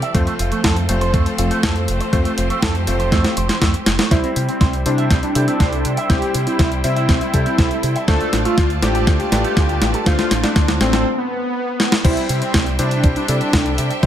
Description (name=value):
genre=italo disco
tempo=121 BPM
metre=4/4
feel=straight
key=C major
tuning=A4 = 440 Hz
part: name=bright studio string section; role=sustained chords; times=0.0-14.1 s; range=E3 to A5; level=-28 LUFS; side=right 1 dB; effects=low-pass filter, shimmer reverb
part: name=electric guitar with an envelope filter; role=arpeggios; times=0.0-11.0 s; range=A3 to E5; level=-26 LUFS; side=right 3 dB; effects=analog chorus, tape echo, shimmer reverb
part: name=clear electric grand piano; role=stabs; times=0.0-14.1 s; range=G3 to C5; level=-25 LUFS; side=left 3 dB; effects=low-pass filter, tape echo, shimmer reverb
part: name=clean 12-bit digital drum machine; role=drums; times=0.0-14.1 s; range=crash cymbal, hi-hat, snare drum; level=-20 LUFS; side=equal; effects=none
part: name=fingered electric bass with an envelope filter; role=bass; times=0.1-14.1 s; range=F1 to C3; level=-21 LUFS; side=equal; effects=tube saturation
part: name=electronic kick drum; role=drums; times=0.1-14.1 s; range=none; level=-18 LUFS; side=equal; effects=none
part: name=wide unison lead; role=melody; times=4.1-14.1 s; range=B3 to A4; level=-22 LUFS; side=equal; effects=analog chorus, ping-pong delay, shimmer reverb
room=moderate digital room reverb, RT60 1.1 s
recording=none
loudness=-15 LUFS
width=side -10 dB against mid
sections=0.0-4.1 A section; 4.1-12.0 B section; 12.0-14.1 C section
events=drum fill 3.1-4.1, 4.1-11.1, 11.8; break 11.1-12.0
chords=0.1 F; 4.1 C; 8.1 Dm7; 12.0 C